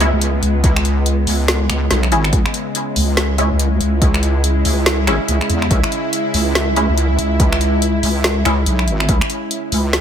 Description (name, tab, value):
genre	deep dubstep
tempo	142 BPM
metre	4/4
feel	swing 60% on 16ths, half-time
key	C# minor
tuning	A4 = 440 Hz
part	bowed-like drone	sustained chords	0.0-10.0 s	C#3 to E4	-21 LUFS	equal	built-in reverb
part	filtered dub chord stab	stabs	0.0-8.6 s	G#3 to E4	-23 LUFS	equal	phaser, ensemble chorus, dub echo
part	wobble bass	bass	0.0-10.0 s	G#1 to E2	-16 LUFS	equal	chorus
part	deep house drum kit	drums	0.0-10.0 s	finger snaps, hi-hat, snare drum	-20 LUFS	equal	none
part	electronic kick drum	drums	0.6-9.2 s	none	-16 LUFS	equal	none
room	light reverb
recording	none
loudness	-14 LUFS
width	side -8 dB against mid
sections	0.0-10.0 A section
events	none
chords	0.0 C#m